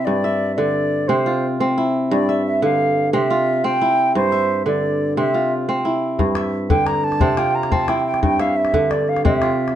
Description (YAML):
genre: west african traditional, West African string and xylophone music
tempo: 118 BPM (dotted quarters)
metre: 12/8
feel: straight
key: unclear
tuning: A4 = 441 Hz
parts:
  - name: concert flute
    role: melody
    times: 0.0-9.8 s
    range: C5 to Bb5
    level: -20 LUFS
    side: right 1 dB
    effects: plate reverb
  - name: kora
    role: arpeggios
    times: 0.0-9.8 s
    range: G2 to E5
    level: -18 LUFS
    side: right 1 dB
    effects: none
  - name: calabash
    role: percussion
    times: 6.2-9.8 s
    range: none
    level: -23 LUFS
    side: left 3 dB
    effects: none
room: moderate small room reverb, RT60 0.5 s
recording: dark, warm production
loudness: -16 LUFS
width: side -10 dB against mid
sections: 0.0-9.8 A section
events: none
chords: 0.1 G5; 1.1 C; 2.1 G5; 3.1 C; 4.1 G5; 5.2 C; 6.2 G5; 7.2 C; 8.2 G5; 9.2 C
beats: | 0.07 0.58 1.09 1.60 | 2.11 2.62 3.13 3.63 | 4.15 4.66 5.17 5.68 | 6.19 6.70 7.21 7.72 | 8.23 8.74 9.25